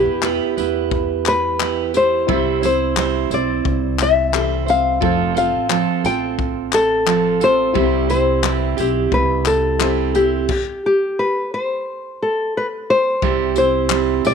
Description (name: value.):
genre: acoustic pop.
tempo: 88 BPM.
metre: 4/4.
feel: straight.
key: C major.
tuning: A4 = 441 Hz.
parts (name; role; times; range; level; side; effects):
nylon-string guitar; melody; 0.0-14.3 s; G4 to G5; -18 LUFS; left 3 dB; none.
fingerpicked steel-string acoustic guitar; accompaniment; 0.0-14.3 s; C3 to C5; -20 LUFS; right 13 dB; none.
warm upright piano; accompaniment; 0.0-10.5 s; E3 to B5; -28 LUFS; left 16 dB; none.
upright bass; bass; 0.1-14.3 s; F1 to E2; -25 LUFS; left 1 dB; none.
natural country drum kit; drums; 0.2-14.3 s; crash cymbal, handclaps, kick drum, tambourine; -24 LUFS; left 6 dB; none.
room: light reverb, studio reverb.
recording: 1960s-style stereo with parts hard left and right.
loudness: -16 LUFS.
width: side -6 dB against mid.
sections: 0.0-13.2 A section; 13.2-14.3 A section.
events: stop 10.5-13.2.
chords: 0.0 Em; 2.3 C; 5.0 F; 7.8 C; 10.5 N.C.; 13.2 C.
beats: 0.23 0.92 1.60 | 2.28 2.97 3.65 4.33 | 5.02 5.70 6.39 7.07 | 7.75 8.44 9.12 9.80 | 10.49 11.17 11.86 12.54 | 13.22 13.91.